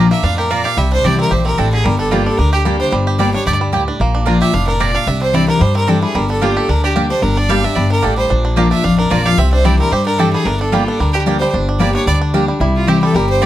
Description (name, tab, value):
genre	bluegrass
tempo	223 BPM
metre	4/4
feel	swing 53% on 8ths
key	G dorian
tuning	A4 = 440 Hz
part	picked steel-string acoustic guitar	accompaniment	0.0-13.5 s	F2 to G4	-17 LUFS	left 3 dB	none
part	bluegrass banjo	arpeggios	0.0-13.5 s	D3 to G4	-21 LUFS	right 4 dB	none
part	mandolin	stabs	0.0-13.5 s	Bb3 to Bb5	-21 LUFS	right 6 dB	none
part	upright bass	bass	0.0-13.5 s	F1 to G2	-17 LUFS	equal	none
part	clear fiddle	melody	0.1-13.5 s	F4 to F5	-19 LUFS	right 1 dB	none
part	lap resonator guitar	second line	12.6-13.5 s	E4 to G4	-20 LUFS	left 1 dB	none
room	light reverb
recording	close, detailed microphones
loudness	-12 LUFS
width	side -13 dB against mid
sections	0.0-4.0 A section; 4.0-12.6 A section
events	none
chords	0.0 Bb; 0.8 Cadd9; 1.9 Gm; 4.0 Bb; 5.1 Cadd9; 6.2 Gm; 8.3 Bb; 9.4 Cadd9; 10.5 Gm; 12.6 C